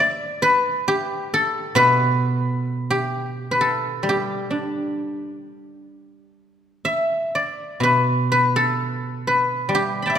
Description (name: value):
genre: chinese traditional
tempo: 62-67 BPM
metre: 4/4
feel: rubato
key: G gong mode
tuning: A4 = 440 Hz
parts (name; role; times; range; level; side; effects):
- guzheng; solo; 0.0-10.2 s; B2 to B5; -19 LUFS; equal; none
room: wet church reverb, RT60 2.5 s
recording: recorded in a church or concert hall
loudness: -19 LUFS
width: side -8 dB against mid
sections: 0.0-10.2 A section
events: none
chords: none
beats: | 0.42 1.31 2.21 3.12 | 4.05 4.97 5.90 6.84 | 7.82 8.77 9.70